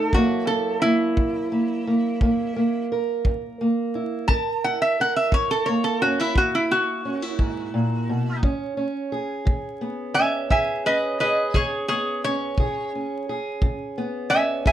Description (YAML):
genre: acoustic country blues, solo or duo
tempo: 58 BPM (dotted quarters)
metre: 12/8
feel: straight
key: F# mixolydian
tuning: A4 = 440 Hz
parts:
  - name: lap resonator guitar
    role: melody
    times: 0.0-14.7 s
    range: E4 to A5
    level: -22 LUFS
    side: equal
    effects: none
  - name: fingerpicked steel-string acoustic guitar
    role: accompaniment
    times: 0.0-14.7 s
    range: F#2 to A#4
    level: -25 LUFS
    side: right 1 dB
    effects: none
  - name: kick drum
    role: drums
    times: 0.1-14.7 s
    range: none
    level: -22 LUFS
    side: equal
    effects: none
room: moderate studio reverb, RT60 0.5 s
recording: vinyl crackle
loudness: -21 LUFS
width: side -11 dB against mid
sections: 0.0-14.7 A section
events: resonator guitar played with a steel bar solo 0.0-14.7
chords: 0.1 F#7; 8.4 C#7(no3)